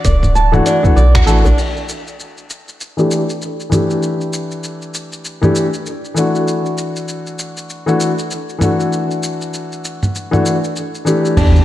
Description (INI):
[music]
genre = organic downtempo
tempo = 98 BPM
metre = 4/4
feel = swing 60% on 16ths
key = E minor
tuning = A4 = 438 Hz
[part]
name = felt-muted upright piano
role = accompaniment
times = 0.0-11.6 s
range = E3 to G4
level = -17 LUFS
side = left 2 dB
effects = sidechain pumping, low-pass filter, digital delay
[part]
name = flamenco guitar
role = arpeggios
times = 0.0-1.6, 11.4-11.6 s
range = D4 to A5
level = -19 LUFS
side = right 2 dB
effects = digital delay
[part]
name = round analog bass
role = bass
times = 0.0-1.5, 11.4-11.6 s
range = D1 to E2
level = -11 LUFS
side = equal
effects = sidechain pumping
[part]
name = dusty soul sampler-style drum kit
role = drums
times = 0.0-11.6 s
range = crash cymbal, finger snaps, hi-hat, shaker, toms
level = -22 LUFS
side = equal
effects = none
[part]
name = electronic kick drum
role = drums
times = 0.0-1.2, 11.4-11.5 s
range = none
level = -15 LUFS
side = equal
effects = none
[part]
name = djembe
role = percussion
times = 0.0-1.5 s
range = none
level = -19 LUFS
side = equal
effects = none
[part]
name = impact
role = sound effects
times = 11.4-11.6 s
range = none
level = -16 LUFS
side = right 1 dB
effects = none
[sound]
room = moderate lush hall reverb, RT60 1.8 s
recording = dark, warm production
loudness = -14 LUFS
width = side -14 dB against mid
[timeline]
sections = 0.0-1.6 A section; 1.6-11.4 B section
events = band accent 1.1-1.4; filter sweep on felt piano 1.6-11.4; impact 11.4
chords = 0.0 D; 1.6 Em7